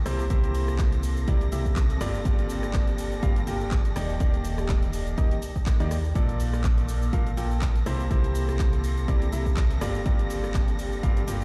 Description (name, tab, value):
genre	piano house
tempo	123 BPM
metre	4/4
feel	swing 56% on 16ths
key	unclear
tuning	A4 = 442 Hz
part	dark symphonic violin section	sustained chords	0.0-11.4 s	A4 to Bb6	-43 LUFS	equal	sidechain pumping
part	solid FM bass	bass	0.0-11.4 s	Eb1 to Eb2	-31 LUFS	equal	sidechain pumping
part	granular cloud pad	texture	1.0-11.4 s	Bb3 to C6	-41 LUFS	equal	built-in reverb, sidechain pumping
part	clear concert grand piano	riff	0.1-11.4 s	G2 to G5	-34 LUFS	equal	sidechain pumping, dub echo
part	house drum kit	drums	0.1-11.4 s	handclaps, hi-hat, rim click, shaker	-41 LUFS	equal	none
part	electronic kick drum	drums	0.3-11.1 s	none	-28 LUFS	equal	none
room	little or no reverb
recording	played on a big sound system in a bare room, large studio reverb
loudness	-25 LUFS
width	mono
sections	0.0-11.4 A section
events	none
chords	0.1 C7; 2.0 Gm7; 4.0 Ebmaj7; 6.2 Bbmaj7; 7.9 C7; 9.8 Gm7